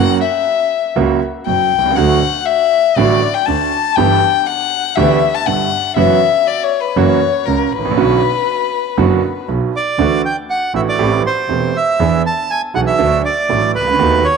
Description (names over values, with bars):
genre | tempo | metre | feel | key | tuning
tango | 120 BPM | 4/4 | rubato | B minor, D major from 10.0 s | A4 = 440 Hz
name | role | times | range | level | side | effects
warm violin | second line | 0.0-9.5 s | A#4 to A5 | -15 LUFS | left 11 dB | none
clear concert grand piano | accompaniment | 0.0-14.2 s | E1 to A4 | -17 LUFS | right 8 dB | none
rich double bass | bass | 0.0-14.2 s | E1 to E2 | -20 LUFS | right 1 dB | none
bandoneon | melody | 9.8-14.4 s | B4 to A5 | -15 LUFS | right 3 dB | none
room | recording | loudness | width
wet spring reverb, RT60 2.6 s | 1960s-style stereo with parts hard left and right | -12 LUFS | side -5 dB against mid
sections
0.0-10.0 A section; 10.0-14.4 B section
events
violin solo 0.0-10.0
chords
0.0 F#; 2.0 D; 4.0 G6; 6.0 F#7sus4; 7.0 F#7; 8.0 Bmadd9; 10.0 Dadd9; 11.0 Am7; 12.0 E7; 13.0 D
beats
0.47 0.97 1.47 | 1.97 2.47 2.97 3.47 | 3.97 4.47 4.97 5.47 | 5.97 6.47 6.97 7.47 | 7.97 8.47 8.98 9.48 | 9.99 10.49 10.99 11.49 | 12.00 12.50 13.00 13.50 | 14.00